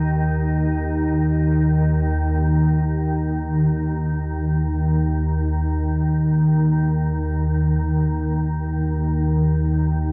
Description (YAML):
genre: ambient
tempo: free time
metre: none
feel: none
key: unclear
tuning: A4 = 440 Hz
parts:
  - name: organ-like drone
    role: solo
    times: 0.0-10.1 s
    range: Eb2 to Eb3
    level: -20 LUFS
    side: equal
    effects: ensemble chorus, built-in reverb, tape echo
room: wet huge ambient reverb, RT60 8.2 s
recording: dark, warm production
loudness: -21 LUFS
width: mono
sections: 0.0-3.9 A section; 3.9-10.1 B section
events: none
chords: none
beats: free time